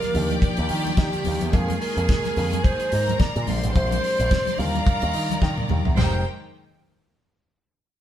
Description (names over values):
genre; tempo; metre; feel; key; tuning
disco; 108 BPM; 4/4; swing 56% on 16ths; F dorian; A4 = 441 Hz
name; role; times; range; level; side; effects
alto flute; melody; 0.0-6.2 s; G4 to F5; -27 LUFS; right 2 dB; none
warm studio violin section; second line; 0.0-6.2 s; Eb4 to C6; -30 LUFS; equal; none
bell-like tine electric piano; accompaniment; 0.0-6.2 s; F3 to Bb4; -31 LUFS; left 1 dB; fast stereo tremolo
bright studio string section; sustained chords; 0.0-6.2 s; C3 to D5; -34 LUFS; left 1 dB; none
damped 70s drum kit; drums; 0.0-6.1 s; china cymbal, hi-hat, kick drum, snare drum, toms; -24 LUFS; equal; none
congas; percussion; 0.0-6.2 s; none; -31 LUFS; left 3 dB; none
picked electric bass with an envelope filter; bass; 0.1-6.2 s; F1 to Eb3; -26 LUFS; equal; none
room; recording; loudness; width
moderate stone room reverb, RT60 1.0 s; band playing live in one room; -20 LUFS; side -11 dB against mid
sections
0.0-6.0 A section; 6.0-8.0 B section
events
drum fill 5.4-6.0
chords
0.1 Ebmaj9; 1.5 Fm7; 3.5 Bb9; 4.6 Ebmaj9; 6.0 Fm11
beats
0.42 0.97 | 1.53 2.09 2.64 3.20 | 3.75 4.31 4.86 5.42 | 5.97